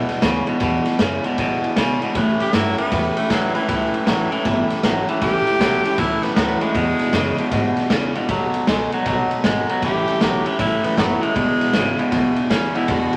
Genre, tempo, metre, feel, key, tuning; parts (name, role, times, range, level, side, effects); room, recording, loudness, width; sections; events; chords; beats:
rockabilly; 156 BPM; 4/4; swing 65% on 8ths; E mixolydian; A4 = 441 Hz
bright tenor saxophone; melody; 0.0-13.1 s; E3 to G4; -26 LUFS; equal
picked steel-string acoustic guitar; accompaniment; 0.0-13.2 s; E2 to F#4; -31 LUFS; equal
twangy electric guitar; riff; 0.0-13.2 s; E2 to G#3; -23 LUFS; equal; spring reverb
upright bass; bass; 0.0-13.2 s; E1 to B2; -30 LUFS; equal
raw garage drum kit; drums; 0.1-13.2 s; kick drum, ride cymbal, snare drum; -25 LUFS; equal
wet studio reverb, RT60 0.8 s; vinyl crackle; -19 LUFS; mono
0.0-13.2 A section
tenor saxophone solo 0.0-13.2
0.0 E7; 2.2 A7; 6.8 E7; 8.3 B7; 9.8 A7; 11.4 E7
0.23 | 0.61 1.00 1.38 1.77 | 2.15 2.53 2.92 3.30 | 3.69 4.07 4.45 4.84 | 5.22 5.60 5.99 6.37 | 6.75 7.14 7.52 7.91 | 8.29 8.67 9.06 9.44 | 9.82 10.21 10.59 10.97 | 11.36 11.74 12.12 12.51 | 12.89